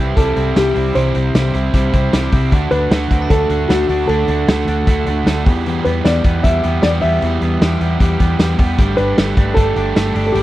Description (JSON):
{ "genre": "jangly indie pop", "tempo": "153 BPM", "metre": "4/4", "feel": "straight", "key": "unclear", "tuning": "A4 = 441 Hz", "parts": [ { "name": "warm upright piano", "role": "melody", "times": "0.0-10.4 s", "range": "F#4 to E5", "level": "-19 LUFS", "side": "equal", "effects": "none" }, { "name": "crunchy overdriven guitar", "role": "accompaniment", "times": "0.0-10.4 s", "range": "E2 to G4", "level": "-22 LUFS", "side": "right 7 dB", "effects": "none" }, { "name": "twelve-string electric guitar", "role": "arpeggios", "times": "0.0-10.4 s", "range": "E2 to D4", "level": "-22 LUFS", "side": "left 4 dB", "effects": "slapback echo" }, { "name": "vintage muted fingered electric bass", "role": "bass", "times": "0.0-10.4 s", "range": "G1 to E2", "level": "-19 LUFS", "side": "equal", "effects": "none" }, { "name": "raw garage drum kit", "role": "drums", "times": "0.2-10.4 s", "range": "hi-hat, kick drum, snare drum", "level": "-16 LUFS", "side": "equal", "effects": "none" } ], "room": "little or no reverb", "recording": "dry, close 1970s-style studio recording", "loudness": "-13 LUFS", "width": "side -15 dB against mid", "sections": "0.0-10.4 A section", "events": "none", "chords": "0.0 C; 2.5 D; 5.5 Em; 8.8 Gsus2" }